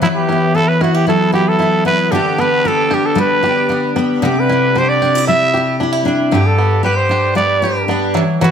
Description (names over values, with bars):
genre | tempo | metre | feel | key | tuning
acoustic pop | 114 BPM | 4/4 | straight | G major | A4 = 439 Hz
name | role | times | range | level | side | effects
growling trumpet | melody | 0.0-8.5 s | E4 to E5 | -15 LUFS | right 2 dB | none
fingerpicked steel-string acoustic guitar | accompaniment | 0.0-8.5 s | G2 to B4 | -14 LUFS | left 1 dB | double-tracked left and right
bluegrass banjo | arpeggios | 0.0-8.5 s | D3 to G4 | -23 LUFS | right 4 dB | none
room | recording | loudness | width
wet studio reverb, RT60 0.9 s | none | -12 LUFS | side -7 dB against mid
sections
0.0-8.5 A section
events
none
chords
0.0 Esus2; 2.1 G/D; 4.2 Cadd9; 6.3 G